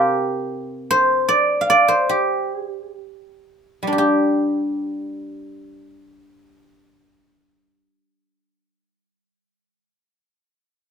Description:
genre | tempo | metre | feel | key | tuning
chinese traditional, Chinese solo plucked strings | 52-84 BPM | 2/4 | rubato | G yu mode | A4 = 439 Hz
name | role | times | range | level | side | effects
guzheng | solo | 0.0-9.9 s | C3 to F5 | -17 LUFS | right 1 dB | none
room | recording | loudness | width
light reverb | minimal, uncompressed stereo recording | -17 LUFS | side -6 dB against mid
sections
0.0-3.9 A section; 3.9-8.4 B section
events
slowing down 0.5-3.9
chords
none

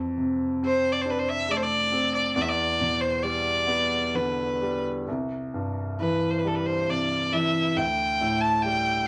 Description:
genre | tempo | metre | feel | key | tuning
celtic folk, Celtic slow air | 68 BPM | 3/4 | rubato | C major | A4 = 439 Hz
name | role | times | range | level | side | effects
felt-muted upright piano | accompaniment | 0.0-9.1 s | C2 to D4 | -30 LUFS | equal | none
clear fiddle | melody | 0.7-9.1 s | A4 to A5 | -27 LUFS | equal | none
room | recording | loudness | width
wet studio reverb, RT60 0.6 s | none | -26 LUFS | mono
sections
0.0-9.1 A section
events
none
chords
0.0 F6; 2.4 Em7; 5.1 C; 7.8 Dsus4

